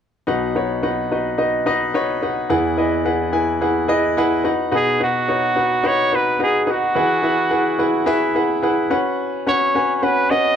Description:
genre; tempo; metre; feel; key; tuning
pop; 108 BPM; 4/4; straight; B major; A4 = 439 Hz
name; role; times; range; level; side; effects
clear concert grand piano; accompaniment; 0.3-10.6 s; B1 to G#5; -18 LUFS; left 1 dB; none
bright trumpet; melody; 4.8-10.6 s; F#4 to D#5; -18 LUFS; right 1 dB; none
room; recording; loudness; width
moderate studio reverb, RT60 0.5 s; dark, warm production; -16 LUFS; side -8 dB against mid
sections
0.3-4.7 A section; 4.7-10.6 B section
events
none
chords
0.3 B; 2.5 Eadd9; 4.5 B; 7.0 Eadd9; 8.9 F#sus4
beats
| 0.28 0.84 1.40 1.95 | 2.51 3.07 3.62 4.18 | 4.74 5.29 5.85 6.41 | 6.96 7.52 8.08 8.63 | 9.19 9.75 10.30

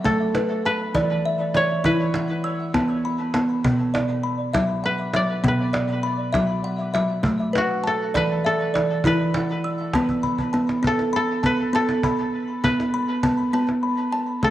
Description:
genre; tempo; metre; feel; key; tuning
world meditative, meditative tuned percussion; 67 BPM (dotted quarters); 6/8; straight; unclear; A4 = 441 Hz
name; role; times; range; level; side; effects
koto; melody; 0.0-14.5 s; F#4 to D5; -26 LUFS; equal; shimmer reverb, diffuse ambient delay
kalimba; arpeggios; 0.0-14.5 s; B2 to E6; -21 LUFS; equal; diffuse ambient delay
cajon; percussion; 0.1-14.5 s; none; -28 LUFS; right 1 dB; none
room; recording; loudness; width
wet echo chamber reverb, RT60 1.3 s, small room ambience; worn, warbling old tape, cassette tape, warbly pitch drift; -20 LUFS; side -13 dB against mid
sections
0.0-10.8 A section; 10.8-14.5 B section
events
drum fill 10.1-10.8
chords
0.0 E5; 3.6 Bm; 7.2 E5; 10.8 Asus2/B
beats
| 0.05 0.94 | 1.84 2.74 | 3.64 4.54 | 5.44 6.34 | 7.25 8.15 | 9.05 9.95 | 10.85 11.74 | 12.64 13.54 | 14.44

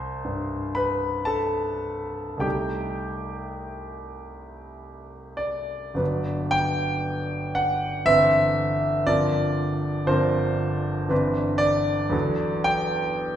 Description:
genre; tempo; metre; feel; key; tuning
classical, impressionist solo piano; 50-61 BPM; 3/4; rubato; unclear; A4 = 440 Hz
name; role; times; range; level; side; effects
clear concert grand piano; solo; 0.0-13.4 s; G1 to C6; -23 LUFS; equal; none
room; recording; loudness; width
wet recital hall reverb, RT60 1.5 s; recorded in a church or concert hall; -22 LUFS; side -10 dB against mid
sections
0.0-6.0 A section; 6.0-13.4 B section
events
none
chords
0.0 C5; 2.4 Cm6; 6.0 Gmaj7; 8.1 Cmaj7/G; 9.1 Bbadd9/G; 11.1 Cmaj9/G; 12.1 Em11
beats
0.24 1.29 | 2.44 3.64 4.81 | 6.00 7.08 8.09 | 9.09 10.10 11.11 | 12.13 13.18

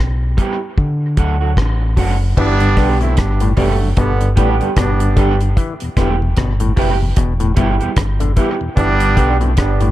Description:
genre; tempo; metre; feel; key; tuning
roots reggae; 75 BPM; 4/4; swing 59% on 16ths; G major; A4 = 440 Hz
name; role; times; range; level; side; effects
deep dub fingered electric bass; bass; 0.0-9.9 s; E1 to D3; -16 LUFS; equal; none
electric guitar at the edge of break-up; accompaniment; 0.4-9.3 s; F#3 to G4; -22 LUFS; right 5 dB; wide subtle chorus, dub echo
deep reggae drum kit; drums; 0.4-9.9 s; crash cymbal, hi-hat, kick drum, rim click; -17 LUFS; equal; none
bright trombone section; second line; 2.4-9.9 s; D3 to E4; -19 LUFS; right 3 dB; dub echo
auto-wah clav; arpeggios; 2.4-9.9 s; A2 to E3; -23 LUFS; left 5 dB; none
mellow tonewheel organ; accompaniment; 2.6-9.9 s; E2 to E4; -24 LUFS; left 1 dB; slow rotary speaker
room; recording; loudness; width
light reverb, small room ambience; none; -13 LUFS; side -14 dB against mid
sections
0.0-2.4 A section; 2.4-9.9 B section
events
none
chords
0.0 Em; 0.8 D; 2.4 G; 5.6 Em; 8.8 G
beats
0.77 1.57 | 2.37 3.17 3.97 4.77 | 5.57 6.37 7.17 7.97 | 8.77 9.57

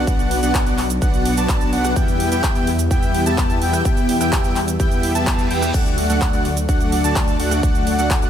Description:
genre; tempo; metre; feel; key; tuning
EDM, festival progressive house; 127 BPM; 4/4; straight; unclear; A4 = 441 Hz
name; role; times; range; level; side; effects
lush unison pad; sustained chords; 0.0-8.3 s; F#3 to E4; -26 LUFS; left 1 dB; chorus, sidechain pumping
wide unison lead; arpeggios; 0.0-8.3 s; F#5 to A5; -24 LUFS; equal; lush chorus, sidechain pumping, ping-pong delay
dense compressed supersaw; riff; 0.0-8.3 s; A3 to A5; -22 LUFS; equal; sidechain pumping, ping-pong delay
wide detuned saw bass; bass; 0.0-8.3 s; B1 to E2; -23 LUFS; equal; chorus, sidechain pumping
big-room dance drum kit; drums; 0.1-8.3 s; crash cymbal, handclaps, hi-hat, rim click, shaker; -26 LUFS; right 1 dB; none
electronic kick drum; drums; 0.1-8.2 s; none; -19 LUFS; equal; none
reverse cymbal; sound effects; 5.1-5.7 s; none; -33 LUFS; right 2 dB; none
room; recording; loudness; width
light reverb, digital ambience; none; -16 LUFS; side -9 dB against mid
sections
0.0-8.3 A section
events
reverse cymbal 5.1-5.7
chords
0.0 Bm; 2.0 Em; 5.7 D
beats
| 0.07 0.55 1.02 1.49 | 1.96 2.44 2.91 3.38 | 3.85 4.33 4.80 5.27 | 5.74 6.21 6.69 7.16 | 7.63 8.11

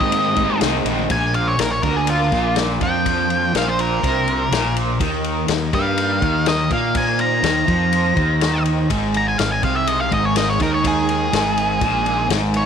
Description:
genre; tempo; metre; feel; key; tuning
psychedelic rock; 123 BPM; 4/4; straight; Bb mixolydian; A4 = 440 Hz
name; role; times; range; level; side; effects
octave-fuzz lead guitar; melody; 0.0-12.7 s; F4 to Bb5; -21 LUFS; equal; distortion, tape echo
clear symphonic string section; sustained chords; 0.0-12.7 s; Eb3 to C5; -28 LUFS; right 15 dB; none
crunchy overdriven guitar; riff; 0.0-12.7 s; Ab2 to Eb4; -21 LUFS; equal; harmonic tremolo
vintage drum kit; drums; 0.0-12.7 s; kick drum, ride cymbal, snare drum; -24 LUFS; left 5 dB; none
congas; percussion; 0.1-1.1 s; none; -32 LUFS; left 12 dB; none
fuzz fingered electric bass; bass; 0.4-12.7 s; Ab1 to Bb2; -23 LUFS; right 1 dB; overdrive
room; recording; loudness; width
light reverb, studio reverb; 1960s-style stereo with parts hard left and right; -16 LUFS; side -7 dB against mid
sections
0.0-1.1 A section; 1.1-12.7 B section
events
lead electric guitar solo 1.1-12.7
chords
0.0 Abadd9; 1.1 Bb; 5.0 Eb5; 8.9 Ab5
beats
0.13 0.62 | 1.10 1.59 2.08 2.57 | 3.05 3.54 4.03 4.51 | 5.00 5.49 5.97 6.46 | 6.95 7.44 7.92 8.41 | 8.90 9.38 9.87 10.35 | 10.84 11.32 11.81 12.29

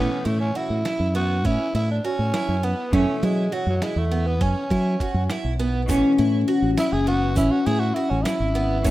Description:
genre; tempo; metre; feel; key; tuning
progressive instrumental, band music in an uneven meter; 202 BPM (eighths); 5/8; straight; unclear; A4 = 440 Hz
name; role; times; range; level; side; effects
growling tenor saxophone; melody; 0.0-8.9 s; F#3 to G#4; -26 LUFS; right 1 dB; none
vintage hollow-body jazz guitar; accompaniment; 0.0-8.9 s; B2 to C#4; -32 LUFS; right 1 dB; none
picked twelve-string acoustic guitar; arpeggios; 0.0-8.9 s; B3 to F#4; -28 LUFS; right 4 dB; ping-pong delay
modern bright fingered electric bass; bass; 0.0-8.9 s; F#1 to F#3; -22 LUFS; equal; none
lo-fi sampler-style drum kit; drums; 0.3-8.9 s; hi-hat, kick drum, snare drum; -28 LUFS; equal; none
vibraphone with soft mallets; second line; 5.9-8.9 s; A3 to C#4; -22 LUFS; left 3 dB; none
egg shaker; percussion; 5.9-8.9 s; none; -39 LUFS; right 6 dB; none
room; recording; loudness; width
light reverb, studio ambience; rough home demo mix; -20 LUFS; side -16 dB against mid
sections
0.0-8.9 A section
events
tenor saxophone solo 0.0-8.9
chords
0.0 A; 2.9 F#m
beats
0.26 0.56 0.85 1.15 | 1.45 1.74 2.04 2.34 2.63 | 2.93 3.23 3.52 3.82 4.12 | 4.41 4.71 5.01 5.30 5.60 | 5.89 6.19 6.49 6.78 7.08 | 7.38 7.67 7.97 8.26 8.56 | 8.86

